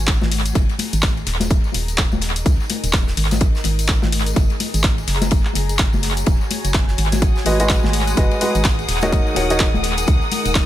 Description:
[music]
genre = piano house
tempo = 126 BPM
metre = 4/4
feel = swing 59% on 16ths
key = unclear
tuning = A4 = 440 Hz
[part]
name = organ-like FM bass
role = bass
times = 0.0-10.7 s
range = D#1 to C#2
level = -22 LUFS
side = equal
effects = sidechain pumping
[part]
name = granular cloud pad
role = texture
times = 0.0-10.7 s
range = D#4 to D#6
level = -30 LUFS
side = right 1 dB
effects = built-in reverb, sidechain pumping
[part]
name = damped 70s drum kit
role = drums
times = 0.1-10.7 s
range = ride cymbal, snare drum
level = -30 LUFS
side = left 3 dB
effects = sidechain pumping on cymbals, high-pass filter on cymbals, studio reverb, high-pass filter on snare, high-pass filter on room, analog delay
[part]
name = electronic kick drum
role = drums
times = 0.1-10.7 s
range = none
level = -18 LUFS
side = equal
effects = studio reverb
[part]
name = punchy analog drum machine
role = drums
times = 0.1-10.7 s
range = handclaps, hi-hat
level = -24 LUFS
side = left 1 dB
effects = overdrive, studio reverb, analog delay
[part]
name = tambourine and congas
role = percussion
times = 0.1-10.7 s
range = none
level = -27 LUFS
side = left 5 dB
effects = analog delay
[part]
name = warm studio violin section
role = sustained chords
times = 7.2-10.7 s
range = F#5 to D#6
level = -27 LUFS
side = left 2 dB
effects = sidechain pumping
[part]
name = clear grand piano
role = riff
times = 7.5-9.7 s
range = D#3 to F#5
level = -21 LUFS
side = equal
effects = sidechain pumping, analog delay
[sound]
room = studio ambience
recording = echo-heavy mix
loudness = -16 LUFS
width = side -13 dB against mid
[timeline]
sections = 0.0-10.7 A section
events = fade-in on ambient pad 0.0-10.7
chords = 0.0 G#5; 1.3 D#5; 3.4 G#5; 5.3 F#; 7.2 G#m7; 8.9 D#m7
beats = 0.08 0.55 1.03 | 1.51 1.98 2.46 2.94 | 3.41 3.89 4.36 4.84 | 5.32 5.79 6.27 6.74 | 7.22 7.70 8.17 8.65 | 9.12 9.60 10.08 10.55

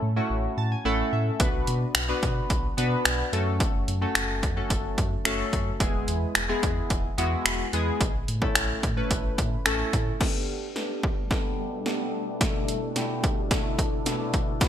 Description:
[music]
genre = dance-pop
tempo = 109 BPM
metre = 4/4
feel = straight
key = unclear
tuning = A4 = 441 Hz
[part]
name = chorused retro synth keys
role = accompaniment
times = 0.0-14.7 s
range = B2 to A5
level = -29 LUFS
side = left 1 dB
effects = sidechain pumping, low-pass filter
[part]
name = sub bass with octave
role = bass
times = 0.0-10.1 s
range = E1 to B2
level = -29 LUFS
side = equal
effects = sidechain pumping
[part]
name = punchy analog drum machine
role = drums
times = 1.4-14.7 s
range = crash cymbal, finger snaps, hi-hat, kick drum, snare drum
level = -26 LUFS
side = equal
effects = overdrive, gated reverb
[part]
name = shimmering ambient pad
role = sustained chords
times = 10.8-14.7 s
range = B2 to E4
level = -36 LUFS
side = equal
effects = chorus, built-in reverb, sidechain pumping, low-pass filter
[sound]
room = light reverb, digital ambience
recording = bright 1980s-style digital production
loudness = -24 LUFS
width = side -10 dB against mid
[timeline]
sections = 0.0-10.2 A section; 10.2-14.7 B section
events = synth keys fill 0.3-1.4; build-up 10.2-14.7; drum fill 10.2-14.7; filter sweep 10.2-14.7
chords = 0.0 A; 1.4 Bm; 3.3 F#m; 5.8 E; 8.0 A; 10.2 Gadd9/B; 12.4 Dsus2/B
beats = 0.30 0.85 | 1.40 1.95 2.50 3.05 | 3.60 4.15 4.70 5.25 | 5.80 6.36 6.91 7.46 | 8.01 8.56 9.11 9.66 | 10.21 10.76 11.31 11.86 | 12.41 12.96 13.51 14.06 | 14.61

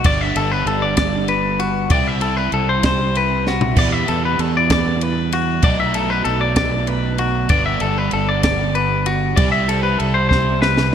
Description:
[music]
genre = math rock and midwest emo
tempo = 64 BPM (dotted quarters)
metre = 6/8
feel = straight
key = unclear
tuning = A4 = 441 Hz
[part]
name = twangy electric guitar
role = arpeggios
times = 0.0-10.9 s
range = F#4 to E5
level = -19 LUFS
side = left 5 dB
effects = none
[part]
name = crunchy overdriven guitar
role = riff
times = 0.0-10.9 s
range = G2 to E4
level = -22 LUFS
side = right 5 dB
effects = ensemble chorus
[part]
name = compact cocktail drum kit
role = drums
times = 0.0-10.9 s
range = crash cymbal, kick drum, ride cymbal, snare drum, toms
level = -21 LUFS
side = right 1 dB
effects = gated reverb
[part]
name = fingered electric bass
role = bass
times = 0.1-10.9 s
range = G1 to E2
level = -22 LUFS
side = right 1 dB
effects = none
[sound]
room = light reverb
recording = bright 1980s-style digital production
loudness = -15 LUFS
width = side -8 dB against mid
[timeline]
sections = 0.0-10.9 A section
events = drum fill 3.5-3.8, 10.3-10.9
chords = 0.1 Gmaj7; 1.9 Cmaj7; 3.8 Em7; 5.6 B7(no3); 7.5 Gmaj7; 9.4 Cmaj7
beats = | 0.06 0.98 | 1.91 2.84 | 3.77 4.70 | 5.63 6.57 | 7.50 8.44 | 9.37 10.31

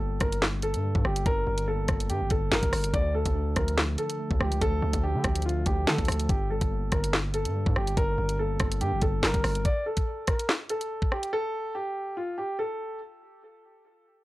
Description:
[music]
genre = hip hop, drill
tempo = 143 BPM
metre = 4/4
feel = half-time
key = unclear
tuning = A4 = 440 Hz
[part]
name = warm concert grand piano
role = melody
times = 0.0-13.0 s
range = F4 to D5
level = -31 LUFS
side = equal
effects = none
[part]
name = mellow tine electric piano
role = accompaniment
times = 0.0-9.7 s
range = G2 to D4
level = -34 LUFS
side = equal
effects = medium stereo tremolo
[part]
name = distorted 808-style bass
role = bass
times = 0.0-9.6 s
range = G1 to D3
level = -29 LUFS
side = equal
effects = distortion
[part]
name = drill drum kit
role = drums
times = 0.2-11.3 s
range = handclaps, hi-hat, kick drum, rim click, snare drum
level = -27 LUFS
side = equal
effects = none
[sound]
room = little or no reverb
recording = dry, gritty hardware recording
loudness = -25 LUFS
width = side -18 dB against mid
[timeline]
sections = 0.0-13.0 A section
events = break 9.7-13.0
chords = 0.0 Gm; 2.9 Dm; 6.3 Gm; 9.7 N.C.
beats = 0.00 0.42 0.84 | 1.26 1.68 2.10 2.52 | 2.94 3.36 3.78 4.20 | 4.62 5.04 5.46 5.87 | 6.29 6.71 7.13 7.55 | 7.97 8.39 8.81 9.23 | 9.65 10.07 10.49 10.91 | 11.33 11.75 12.17 12.59

